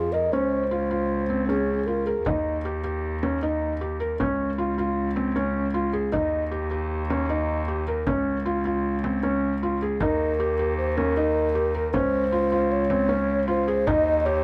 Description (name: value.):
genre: contemporary instrumental, chamber music in an uneven meter.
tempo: 155 BPM.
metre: 5/4.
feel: straight.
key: Db lydian.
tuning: A4 = 439 Hz.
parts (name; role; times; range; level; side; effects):
breathy mellow round clay ocarina; second line; 0.0-2.3, 10.0-14.4 s; Ab4 to Eb5; -27 LUFS; equal; none.
felt-muted upright piano; arpeggios; 0.0-14.4 s; C4 to Bb4; -28 LUFS; equal; none.
rich cello; bass; 0.0-14.4 s; Db2 to F2; -30 LUFS; equal; none.
frame drum; percussion; 2.3-14.4 s; none; -34 LUFS; equal; none.
room: light reverb.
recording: none.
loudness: -25 LUFS.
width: mono.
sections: 0.0-2.3 A section; 2.3-14.4 B section.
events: none.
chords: 0.3 Dbmaj7; 2.3 Eb; 4.2 Db; 6.1 Eb; 8.1 Db; 10.0 Eb; 11.9 Dbmaj7; 13.9 Eb7.